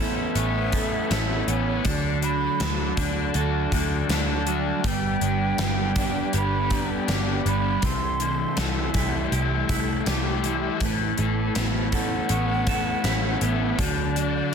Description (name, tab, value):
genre	rock, shoegaze and dream pop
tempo	80 BPM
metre	4/4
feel	straight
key	A mixolydian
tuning	A4 = 436 Hz
part	breathy mellow jazz flute	melody	0.0-14.5 s	C#5 to C6	-31 LUFS	right 4 dB	tape echo
part	pipe organ, soft reed	sustained chords	0.0-14.5 s	F#4 to C6	-35 LUFS	right 1 dB	none
part	electric guitar through a small old amp	arpeggios	0.0-14.5 s	E3 to A4	-34 LUFS	left 1 dB	analog chorus, tape echo
part	clean electric guitar	riff	0.0-14.5 s	C3 to C#5	-29 LUFS	right 16 dB	reverse reverb
part	crunchy overdriven guitar	riff	0.0-14.5 s	A2 to F#4	-28 LUFS	left 15 dB	lush chorus
part	vintage muted picked electric bass	bass	0.0-14.4 s	G1 to D2	-27 LUFS	equal	none
part	gated 80s drum kit	drums	0.4-14.3 s	hi-hat, kick drum, snare drum	-28 LUFS	equal	none
room	little or no reverb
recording	dense, heavily limited modern master, faint mains hum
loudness	-22 LUFS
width	side -6 dB against mid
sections	0.0-14.5 A section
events	none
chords	0.0 Aadd9; 1.9 D; 4.8 G; 7.8 C6; 10.8 Aadd9; 13.8 D